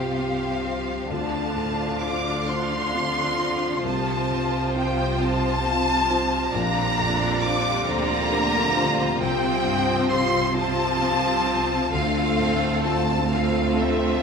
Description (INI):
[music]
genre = cinematic, emotional film score for orchestra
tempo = 44 BPM (dotted quarters)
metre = 6/8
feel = rubato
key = D minor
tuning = A4 = 441 Hz
[part]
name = warm symphonic violin section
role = melody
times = 0.0-14.2 s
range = E5 to D6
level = -25 LUFS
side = left 1 dB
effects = none
[part]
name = warm symphonic violin section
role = second line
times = 0.0-14.2 s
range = F4 to F5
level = -30 LUFS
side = left 1 dB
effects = none
[part]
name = felt-muted upright piano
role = accompaniment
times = 0.0-14.2 s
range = Bb1 to C5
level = -30 LUFS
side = right 1 dB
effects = none
[part]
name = rich symphonic viola section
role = accompaniment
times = 0.0-14.2 s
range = F3 to F4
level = -30 LUFS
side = right 2 dB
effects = none
[part]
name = mellow French horn section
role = sustained chords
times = 0.0-14.2 s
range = A3 to G4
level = -30 LUFS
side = left 2 dB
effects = none
[part]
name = concert harp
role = arpeggios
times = 0.0-14.2 s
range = Bb2 to D5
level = -31 LUFS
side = left 6 dB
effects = none
[part]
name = rich studio double bass section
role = bass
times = 0.0-14.2 s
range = Bb1 to D2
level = -30 LUFS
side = right 4 dB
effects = none
[part]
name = warm symphonic cello section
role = bass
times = 0.0-14.2 s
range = D2 to D3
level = -31 LUFS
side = right 2 dB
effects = none
[sound]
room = wet scoring stage reverb, RT60 2.0 s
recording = minimal, uncompressed stereo recording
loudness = -20 LUFS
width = side -5 dB against mid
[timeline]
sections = 0.0-14.2 A section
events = none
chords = 0.0 Csus4; 1.1 Dm7; 3.8 F/C; 6.5 Bbadd9; 9.2 Csus4; 11.9 Dm7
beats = | 1.10 2.47 | 3.84 5.20 | 6.55 7.89 | 9.22 10.57 | 11.93 13.32